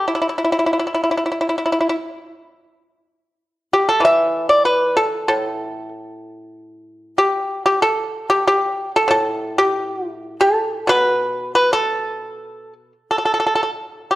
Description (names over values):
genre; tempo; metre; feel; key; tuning
chinese traditional, Chinese solo plucked strings; 84-97 BPM; 4/4; rubato; unclear; A4 = 441 Hz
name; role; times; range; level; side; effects
pipa; solo; 0.0-14.2 s; A2 to E5; -16 LUFS; equal; none
room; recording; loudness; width
moderate recital hall reverb, RT60 1.6 s; worn, warbling old tape, cassette tape, warbly pitch drift; -16 LUFS; side -16 dB against mid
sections
0.0-13.1 A section; 13.1-14.2 B section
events
none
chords
none